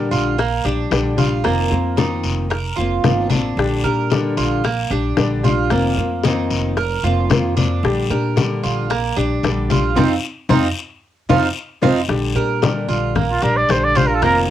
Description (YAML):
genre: latin, Cuban son and guajira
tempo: 113 BPM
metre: 4/4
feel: straight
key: Bb major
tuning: A4 = 443 Hz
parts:
  - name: nylon-string guitar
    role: accompaniment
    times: 0.0-14.5 s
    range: D3 to G4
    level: -21 LUFS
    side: left 4 dB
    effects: cassette tape
  - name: Cuban tres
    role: arpeggios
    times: 0.0-14.5 s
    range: Bb3 to Bb4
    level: -22 LUFS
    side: right 8 dB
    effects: cassette tape
  - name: upright bass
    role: bass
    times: 0.0-14.5 s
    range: F1 to Bb2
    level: -22 LUFS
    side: right 1 dB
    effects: none
  - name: congas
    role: percussion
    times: 0.1-14.5 s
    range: none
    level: -21 LUFS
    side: left 3 dB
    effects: none
  - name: guiro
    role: percussion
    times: 0.1-14.5 s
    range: none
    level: -30 LUFS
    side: left 7 dB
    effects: none
  - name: bongos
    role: percussion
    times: 0.4-14.5 s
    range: none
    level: -22 LUFS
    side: left 6 dB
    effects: none
  - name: breathy trumpet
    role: melody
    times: 13.3-14.4 s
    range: F4 to D5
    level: -17 LUFS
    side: right 1 dB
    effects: none
room: moderate studio reverb, RT60 0.5 s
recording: home recording on cassette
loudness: -16 LUFS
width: side -11 dB against mid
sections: 0.0-12.1 A section; 12.1-14.5 B section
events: band accent 10.0-12.1; drum fill 11.3-12.1; trumpet solo 12.1-14.5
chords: 0.0 Bb6; 1.4 F7sus4; 3.6 Bb6; 5.7 F7sus4; 7.8 Bb6; 10.0 F5; 12.1 Bb6